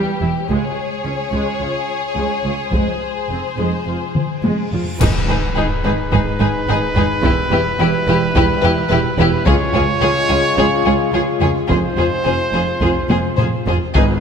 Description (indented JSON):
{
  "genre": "cinematic, epic orchestral film score",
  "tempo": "107 BPM",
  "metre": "4/4",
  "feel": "straight",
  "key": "unclear",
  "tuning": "A4 = 440 Hz",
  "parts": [
    { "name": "warm symphonic violin section", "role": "melody", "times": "0.0-14.0 s", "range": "B4 to C#5", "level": "-25 LUFS", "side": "left 5 dB", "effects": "none" },
    { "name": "rich symphonic violin section", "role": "second line", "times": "0.0-14.0 s", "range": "G4 to G#4", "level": "-24 LUFS", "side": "left 5 dB", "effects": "none" },
    { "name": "rich symphonic viola section", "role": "accompaniment", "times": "0.0-14.0 s", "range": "G3 to E#4", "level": "-24 LUFS", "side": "right 1 dB", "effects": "none" },
    { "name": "dark studio cello section", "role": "bass", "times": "0.2-14.0 s", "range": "C#2 to G#2", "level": "-22 LUFS", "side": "right 3 dB", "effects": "none" },
    { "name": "warm symphonic double bass section", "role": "bass", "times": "0.2-14.0 s", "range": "E1 to C#2", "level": "-23 LUFS", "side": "right 4 dB", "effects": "none" },
    { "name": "mellow French horn section", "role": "sustained chords", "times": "0.5-14.2 s", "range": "G3 to E#4", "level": "-25 LUFS", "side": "left 6 dB", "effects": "none" },
    { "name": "taiko ensemble", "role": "drums", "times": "0.5-14.2 s", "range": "none", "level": "-20 LUFS", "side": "left 1 dB", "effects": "none" },
    { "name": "reverse cymbal and impact", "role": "sound effects", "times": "4.6-7.2 s", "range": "none", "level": "-29 LUFS", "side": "equal", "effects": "none" },
    { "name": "clear trumpet", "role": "stabs", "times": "5.0-14.2 s", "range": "B4 to C#5", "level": "-21 LUFS", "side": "right 2 dB", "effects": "none" },
    { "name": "clash cymbals and concert bass drum", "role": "percussion", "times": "5.0-6.1 s", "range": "none", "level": "-23 LUFS", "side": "equal", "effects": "none" },
    { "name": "timpani", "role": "percussion", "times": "14.0-14.2 s", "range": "G#2", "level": "-19 LUFS", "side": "left 1 dB", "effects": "none" }
  ],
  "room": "moderate scoring stage reverb, RT60 1.8 s",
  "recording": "none",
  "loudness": "-15 LUFS",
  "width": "side -7 dB against mid",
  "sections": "0.0-5.0 A section; 5.0-14.2 B section",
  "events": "drum fill 4.2-5.0, 13.1-14.0; reverse cymbal 4.6-5.0; band accent 5.0-5.6; impact 5.0-7.2",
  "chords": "0.5 C#; 2.7 Fm; 5.0 G#m; 7.2 Em; 9.5 C#; 11.7 Fm",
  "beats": "| 0.49 1.05 1.61 2.17 | 2.73 3.30 3.87 4.44 | 5.01 5.57 6.13 6.68 | 7.24 7.80 8.35 8.91 | 9.47 10.02 10.58 11.13 | 11.70 12.26 12.83 13.39 | 13.96"
}